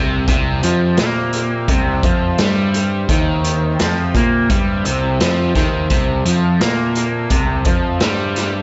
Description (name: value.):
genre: psychedelic rock.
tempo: 86 BPM.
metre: 4/4.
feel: straight.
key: C mixolydian.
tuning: A4 = 441 Hz.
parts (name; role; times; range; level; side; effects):
pedal harmonium; sustained chords; 0.0-8.6 s; C4 to E5; -28 LUFS; equal; none.
crunchy overdriven guitar; riff; 0.0-8.6 s; C3 to Bb3; -21 LUFS; equal; phaser.
fuzz picked electric bass; bass; 0.0-8.6 s; C2 to Bb2; -23 LUFS; equal; overdrive.
raw garage drum kit; drums; 0.3-8.5 s; hi-hat, kick drum, snare drum; -21 LUFS; equal; dub echo.
room: little or no reverb.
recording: echo-heavy mix, nothing above 7.8 kHz.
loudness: -17 LUFS.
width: mono.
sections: 0.0-8.6 A section.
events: none.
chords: 0.0 C.